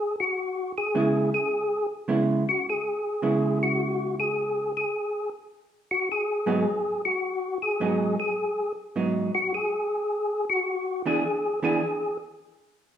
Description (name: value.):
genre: jazz.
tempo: 105 BPM.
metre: 4/4.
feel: swing 66% on 8ths.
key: G# minor.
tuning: A4 = 442 Hz.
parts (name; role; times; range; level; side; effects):
percussive tonewheel organ; melody; 0.0-12.2 s; F#4 to G#4; -26 LUFS; left 1 dB; chorus vibrato, fast rotary speaker.
vintage hollow-body jazz guitar; accompaniment; 0.9-11.8 s; G#2 to G#4; -26 LUFS; right 2 dB; none.
room: wet large studio reverb, RT60 1.1 s.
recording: band playing live in one room.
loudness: -24 LUFS.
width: side -9 dB against mid.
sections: 0.0-13.0 A section.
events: tonewheel organ solo 0.0-13.0.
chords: 0.0 G#7(no3); 0.9 C#m7; 5.5 G#m7; 10.1 E7; 12.4 N.C..